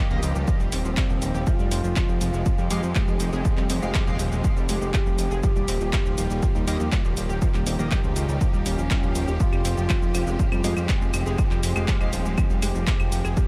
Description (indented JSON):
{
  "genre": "melodic techno",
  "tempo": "121 BPM",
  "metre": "4/4",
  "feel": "straight",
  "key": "F minor",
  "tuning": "A4 = 441 Hz",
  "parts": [
    { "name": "warm studio string section", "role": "sustained chords", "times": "0.0-13.5 s", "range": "Eb3 to G4", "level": "-36 LUFS", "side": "equal", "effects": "sidechain pumping" },
    { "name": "analog pluck", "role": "arpeggios", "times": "0.0-13.4 s", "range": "F3 to Ab4", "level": "-34 LUFS", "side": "equal", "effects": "chorus, sidechain pumping, analog delay" },
    { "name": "sync-sweep polysynth", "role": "stabs", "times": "0.0-12.1 s", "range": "Ab3 to F5", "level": "-40 LUFS", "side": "equal", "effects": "none" },
    { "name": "fat analog bass", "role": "bass", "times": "0.1-13.3 s", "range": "Eb1 to F2", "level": "-29 LUFS", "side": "equal", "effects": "tube saturation, sidechain pumping" },
    { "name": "punchy analog drum machine", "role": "drums", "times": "0.1-13.5 s", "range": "claves, handclaps, hi-hat, shaker", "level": "-35 LUFS", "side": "equal", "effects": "none" },
    { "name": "electronic kick drum", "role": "drums", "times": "0.5-13.5 s", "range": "none", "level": "-26 LUFS", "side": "equal", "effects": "none" },
    { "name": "expressive portamento lead", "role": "melody", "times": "0.7-13.5 s", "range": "C4 to G4", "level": "-36 LUFS", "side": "equal", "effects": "lush chorus, delay" },
    { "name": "swell", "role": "sound effects", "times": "8.6-9.4 s", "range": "none", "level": "-45 LUFS", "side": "equal", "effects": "none" }
  ],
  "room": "light reverb",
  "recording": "none",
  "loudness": "-23 LUFS",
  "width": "mono",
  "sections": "0.0-13.5 A section",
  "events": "swell 8.6-9.4",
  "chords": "0.0 Eb; 1.5 Fmadd9; 5.4 Eb; 9.4 Fmadd9"
}